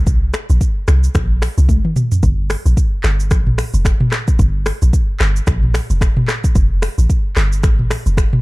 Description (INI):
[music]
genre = afrobeats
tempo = 111 BPM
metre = 4/4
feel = swing 58% on 16ths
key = G minor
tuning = A4 = 440 Hz
[part]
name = deep log drum bass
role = bass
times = 0.0-8.3 s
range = F1 to C2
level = -14 LUFS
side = equal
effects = none
[part]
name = afro-pop drum kit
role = drums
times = 0.1-8.4 s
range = finger snaps, handclaps, hi-hat, kick drum, rim click, shaker, toms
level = -15 LUFS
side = equal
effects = none
[sound]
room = little or no reverb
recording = dark, warm production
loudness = -13 LUFS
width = side -22 dB against mid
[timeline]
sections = 0.0-8.4 A section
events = drum fill 1.7-2.2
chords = none